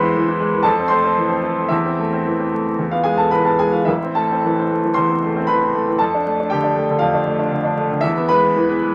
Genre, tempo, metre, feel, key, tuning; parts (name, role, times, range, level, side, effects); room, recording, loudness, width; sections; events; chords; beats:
classical, virtuoso piano study; 103-121 BPM; 4/4; rubato; A minor; A4 = 440 Hz
bright grand piano; solo; 0.0-8.9 s; A1 to C6; -18 LUFS; equal
moderate studio reverb, RT60 0.6 s; vinyl crackle; -18 LUFS; mono
0.0-8.9 A section
0.0 E; 0.7 Fmaj7; 1.7 Am/E; 2.8 E; 3.9 Am; 6.0 Dm/F; 8.0 E
0.16 0.66 1.18 | 1.71 2.25 2.79 3.32 | 3.88 4.45 4.97 5.49 | 6.00 6.51 7.01 7.51 | 8.03 8.56